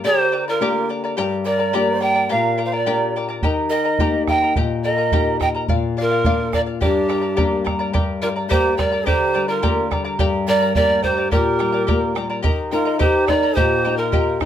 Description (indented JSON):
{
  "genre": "andean folk, Andean ensemble",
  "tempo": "106 BPM",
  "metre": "2/4",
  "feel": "straight",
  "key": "G minor",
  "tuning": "A4 = 436 Hz",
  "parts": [
    { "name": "breathy large quena", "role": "second line", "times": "0.0-14.4 s", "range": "D4 to F5", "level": "-25 LUFS", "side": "right 4 dB", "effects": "none" },
    { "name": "charango", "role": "accompaniment", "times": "0.0-14.5 s", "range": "G4 to Bb5", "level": "-23 LUFS", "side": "left 2 dB", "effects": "none" },
    { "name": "nylon-string guitar", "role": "accompaniment", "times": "0.0-14.5 s", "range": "G2 to G4", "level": "-24 LUFS", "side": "left 5 dB", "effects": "none" },
    { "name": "breathy reedy pan flute", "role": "melody", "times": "0.1-14.4 s", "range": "G4 to G5", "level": "-20 LUFS", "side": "right 2 dB", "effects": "none" },
    { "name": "bombo", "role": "percussion", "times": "3.4-14.5 s", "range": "none", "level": "-22 LUFS", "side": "right 2 dB", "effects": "none" }
  ],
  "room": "moderate studio reverb, RT60 0.5 s",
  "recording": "none",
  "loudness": "-16 LUFS",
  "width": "side -10 dB against mid",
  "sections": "0.0-7.9 A section; 7.9-14.5 A section",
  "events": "none",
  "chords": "0.0 Gm; 3.4 Eb; 5.7 Bb; 6.8 Gm; 12.4 Eb",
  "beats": "| 0.05 0.61 | 1.17 1.74 | 2.30 2.87 | 3.43 3.99 | 4.56 5.12 | 5.69 6.25 | 6.82 7.38 | 7.94 8.51 | 9.07 9.63 | 10.19 10.76 | 11.32 11.88 | 12.44 13.00 | 13.56 14.12"
}